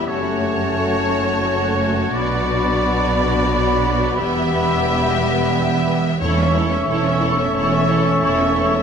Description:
cinematic, emotional film score for orchestra; 88 BPM; 3/4; rubato; E dorian; A4 = 440 Hz
rich studio violin section; melody; 0.0-8.8 s; C#5 to E5; -25 LUFS; left 4 dB
dark clarinet; second line; 0.0-8.8 s; F#4 to A4; -27 LUFS; left 6 dB
flute section; second line; 0.0-8.8 s; A5 to C#6; -25 LUFS; right 1 dB
rich studio violin section; second line; 0.0-8.8 s; F#4 to C#5; -29 LUFS; left 2 dB
warm oboe; second line; 0.0-8.8 s; C#5 to E5; -26 LUFS; right 1 dB
warm studio viola section; accompaniment; 0.0-8.8 s; A3 to E4; -27 LUFS; right 1 dB
mellow French horn section; sustained chords; 0.0-8.8 s; F#3 to D4; -24 LUFS; left 2 dB
rich studio double bass section; bass; 0.0-8.8 s; E1 to B1; -24 LUFS; right 4 dB
warm studio cello section; bass; 0.0-8.8 s; E2 to B2; -24 LUFS; right 3 dB
timpani; percussion; 6.2-7.2 s; E2; -31 LUFS; equal
wet scoring stage reverb, RT60 1.7 s; -16 LUFS; side -7 dB against mid
0.0-8.8 A section
0.1 F#m; 2.2 Bm; 4.2 Em; 6.2 A/E
| 0.09 0.78 1.47 | 2.15 2.84 3.51 | 4.18 4.86 5.54 | 6.22 6.88 7.55 | 8.22

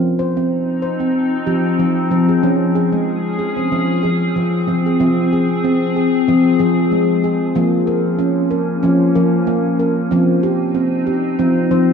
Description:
world meditative, meditative tuned percussion; 94 BPM; 4/4; swing 56% on 16ths; F minor; A4 = 438 Hz
glassy FM pad; sustained chords; 0.5-11.9 s; F3 to Ab4; -18 LUFS; left 3 dB; ensemble chorus, built-in reverb
handpan; arpeggios; 0.0-11.9 s; F3 to C5; -16 LUFS; right 1 dB
wet recital hall reverb, RT60 1.3 s; dark, warm production; -14 LUFS; side -6 dB against mid
0.0-5.0 A section; 5.0-11.9 B section
0.0 Cm/F; 2.4 Db/F; 3.7 Fm; 7.6 Bbm/F; 10.1 Cm/F
0.50 1.15 1.79 | 2.43 3.08 3.72 4.36 | 5.00 5.64 6.28 6.92 | 7.56 8.20 8.84 9.48 | 10.11 10.75 11.39

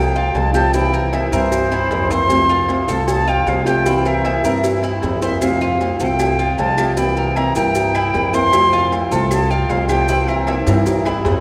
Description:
latin, Cuban son and guajira; 154 BPM; 4/4; straight; F major; A4 = 443 Hz
bright concert flute; melody; 0.0-11.1 s; C5 to C6; -22 LUFS; equal
flamenco guitar; accompaniment; 0.0-11.4 s; C3 to F4; -24 LUFS; equal
Cuban tres; arpeggios; 0.0-11.4 s; E4 to E5; -26 LUFS; equal
upright bass; bass; 0.0-11.4 s; C2 to G2; -24 LUFS; equal
maracas; percussion; 0.2-11.4 s; -39 LUFS; equal
timbales and agogo bells; percussion; 0.3-11.4 s; -28 LUFS; equal
cowbell; percussion; 0.4-11.4 s; -28 LUFS; equal
claves; percussion; 5.4-11.3 s; -41 LUFS; equal
wet cathedral reverb, RT60 5.8 s; recorded in a church or concert hall; -17 LUFS; mono
0.0-11.4 A section
drum fill 10.5-11.4
0.0 F; 0.7 C7; 2.3 F; 3.9 C7; 5.4 F; 7.0 C7; 8.5 F; 10.1 C7
0.35 | 0.74 1.13 1.52 1.91 | 2.30 2.69 3.08 3.47 | 3.86 4.25 4.64 5.03 | 5.42 5.80 6.20 6.58 | 6.97 7.36 7.75 8.14 | 8.53 8.92 9.31 9.70 | 10.09 10.47 10.86 11.25

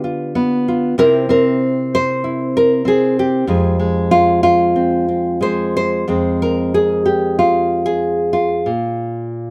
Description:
folk, solo fingerstyle acoustic guitar; 94 BPM; 4/4; rubato; F minor; A4 = 440 Hz
nylon-string guitar; solo; 0.0-9.5 s; F2 to C5; -16 LUFS; equal
light reverb; recorded outdoors, with no room sound; -16 LUFS; mono
0.0-6.1 A section; 6.1-9.5 B section
0.0 G7/D; 1.0 C; 3.5 Fm; 8.7 Bb5
0.36 | 0.98 1.61 2.24 2.85 | 3.48 4.11 4.75 5.42 | 6.08 6.74 7.38 8.02 | 8.66 9.30

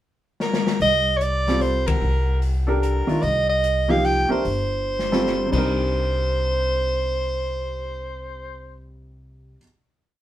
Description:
modal jazz; 148 BPM; 3/4; swing 66% on 8ths; C dorian; A4 = 439 Hz
warm soprano saxophone; melody; 0.4-8.8 s; Bb4 to G5; -23 LUFS; right 1 dB
open jazz drum kit; drums; 0.4-5.6 s; crash cymbal, hi-hat, kick drum, ride cymbal, snare drum; -27 LUFS; left 3 dB
upright bass; bass; 0.8-9.5 s; G1 to C2; -25 LUFS; equal
warm baby grand piano; accompaniment; 1.5-9.6 s; C3 to Bb4; -24 LUFS; equal
moderate studio reverb, RT60 0.6 s; band playing live in one room; -19 LUFS; side -13 dB against mid
0.0-0.8 pickup bar; 0.8-5.7 A section; 5.7-8.1 final hit
drum fill 0.4-0.8, 4.9-5.3; band accent 1.8
0.0 N.C.; 0.8 Cm9
0.39 | 0.80 1.20 1.61 | 2.01 2.42 2.82 | 3.23 3.63 4.04 | 4.45 4.85 5.26 | 5.66 6.07 6.47 | 6.88 7.28 7.68

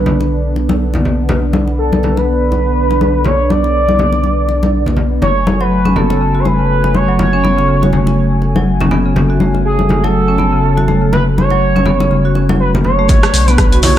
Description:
afro house; 122 BPM; 4/4; swing 57% on 16ths; B dorian; A4 = 439 Hz
expressive portamento lead; melody; 0.0-14.0 s; G#4 to D5; -17 LUFS; right 1 dB; lush chorus, tape echo
warm analog pad; sustained chords; 0.0-14.0 s; D3 to G#5; -20 LUFS; equal; chorus, sidechain pumping
round analog bass; bass; 0.0-14.0 s; F#1 to B1; -17 LUFS; equal; sidechain pumping
congas; percussion; 0.1-13.9 s; -17 LUFS; left 2 dB
marimba with medium hard mallets; arpeggios; 5.6-14.0 s; C#3 to F#4; -15 LUFS; left 1 dB; sidechain pumping, tape echo
deep house drum kit; drums; 13.1-13.9 s; hi-hat, rim click; -17 LUFS; equal; low-pass filter on hats, low-pass filter on snare, low-pass filter on toms, low-pass filter on room
electronic kick drum; drums; 13.1-13.7 s; -11 LUFS; equal
maracas; percussion; 13.1-14.0 s; -23 LUFS; right 4 dB
light reverb; -10 LUFS; side -11 dB against mid
0.0-13.1 A section
0.0 Bm; 5.2 F#madd9; 13.1 Bmadd9
0.30 0.80 | 1.29 1.78 2.27 2.76 | 3.25 3.75 4.24 4.73 | 5.22 5.71 6.21 6.70 | 7.19 7.68 8.17 8.66 | 9.16 9.65 10.14 10.63 | 11.12 11.62 12.11 12.60 | 13.09 13.58

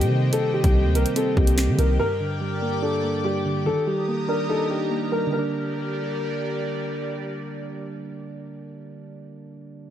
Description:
hip hop, drill; 144 BPM; 4/4; half-time; G minor; A4 = 436 Hz
dark concert grand piano; melody; 0.0-6.5 s; G4 to Bb4; -26 LUFS; left 2 dB; digital delay
soft electric-piano-like synth keys; accompaniment; 0.0-9.9 s; G2 to Eb4; -27 LUFS; right 2 dB; chorus
airy breathy pad; sustained chords; 0.0-8.8 s; G3 to Eb6; -31 LUFS; left 1 dB; chorus
long sustained 808-style bass; bass; 0.0-2.0 s; C2 to Eb3; -20 LUFS; equal
drill drum kit; drums; 0.0-1.9 s; finger snaps, hi-hat, kick drum, snare drum; -22 LUFS; equal
light reverb, digital ambience; -21 LUFS; side -11 dB against mid
0.0-5.3 A section; 5.3-8.7 B section
0.0 Cm7; 2.0 Gm; 3.7 Ebmaj7; 5.3 Gm
| 0.33 0.74 1.16 1.58 | 1.99 2.41 2.83 3.24 | 3.66 4.08 4.49 4.91 | 5.33 5.74 6.16 6.58 | 6.99 7.41 7.83 8.24

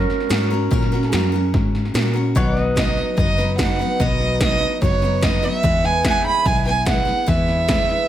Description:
honky-tonk and classic country; 146 BPM; 4/4; straight; B major; A4 = 440 Hz
electric guitar through a small old amp; second line; 0.0-1.9 s; C#4 to A#4; -25 LUFS; right 5 dB; tape echo
picked steel-string acoustic guitar; accompaniment; 0.0-8.1 s; B2 to B4; -24 LUFS; left 3 dB
pedal steel guitar; sustained chords; 0.0-8.1 s; C#5 to G#5; -31 LUFS; left 2 dB
vintage muted fingered electric bass; bass; 0.0-7.9 s; F#1 to A#2; -22 LUFS; equal
80s electronic pad drums; drums; 0.0-7.9 s; hi-hat, kick drum, snare drum; -22 LUFS; equal
dark upright piano; accompaniment; 0.3-8.0 s; C#4 to B4; -28 LUFS; right 7 dB
dark fiddle; melody; 2.8-8.1 s; C#5 to B5; -20 LUFS; right 4 dB
little or no reverb; close, detailed microphones; -16 LUFS; side -12 dB against mid
0.0-2.4 A section; 2.4-8.1 B section
clean electric guitar solo 0.0-2.4
0.0 F#; 2.4 B; 5.6 E
0.30 | 0.71 1.12 1.53 1.95 | 2.35 2.77 3.18 3.59 | 4.00 4.41 4.82 5.23 | 5.64 6.05 6.46 6.87 | 7.29 7.70

